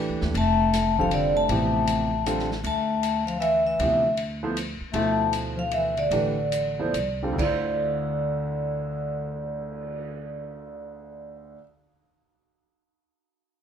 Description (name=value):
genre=modal jazz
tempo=133-157 BPM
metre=3/4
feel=swing 64% on 8ths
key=D dorian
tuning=A4 = 439 Hz
part: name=warm concert grand piano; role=accompaniment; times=0.0-11.6 s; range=D2 to C5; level=-31 LUFS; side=right 2 dB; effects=none
part: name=upright bass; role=bass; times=0.0-11.5 s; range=F1 to Eb2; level=-32 LUFS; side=right 1 dB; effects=none
part: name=open jazz drum kit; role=drums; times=0.2-10.0 s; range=crash cymbal, cymbal swell, hi-hat, kick drum, ride cymbal, snare drum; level=-36 LUFS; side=left 1 dB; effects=none
part: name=vibraphone with medium hard mallets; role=melody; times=0.4-11.5 s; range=D5 to A5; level=-26 LUFS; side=left 1 dB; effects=none
part: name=breathy bass clarinet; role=second line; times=0.4-10.8 s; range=D3 to A3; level=-29 LUFS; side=left 2 dB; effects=none
room=wet club reverb, RT60 0.8 s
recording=minimal, uncompressed stereo recording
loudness=-22 LUFS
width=side -8 dB against mid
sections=0.0-7.4 A section; 7.4-10.1 B section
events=slowing down 4.9-7.4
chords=0.0 Dm9